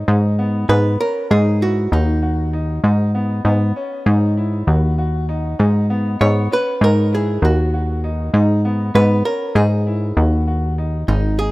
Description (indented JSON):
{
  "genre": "progressive instrumental, progressive",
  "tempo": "196 BPM (eighths)",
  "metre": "9/8",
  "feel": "straight",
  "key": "G# minor",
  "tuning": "A4 = 440 Hz",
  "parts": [
    { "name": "clear baby grand piano", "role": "arpeggios", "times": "0.0-11.5 s", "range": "B3 to F#4", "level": "-26 LUFS", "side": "left 1 dB", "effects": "digital delay" },
    { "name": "plucky analog bass", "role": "bass", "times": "0.0-11.5 s", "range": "G#1 to G#2", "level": "-15 LUFS", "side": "equal", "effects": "none" },
    { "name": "archtop guitar, miked and amplified", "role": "melody", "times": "0.7-11.5 s", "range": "D#4 to C#5", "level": "-21 LUFS", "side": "right 2 dB", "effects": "none" }
  ],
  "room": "light reverb",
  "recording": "rough home demo mix",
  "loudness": "-15 LUFS",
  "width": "side -20 dB against mid",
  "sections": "0.1-11.1 A section",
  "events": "none",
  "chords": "0.1 G#m7"
}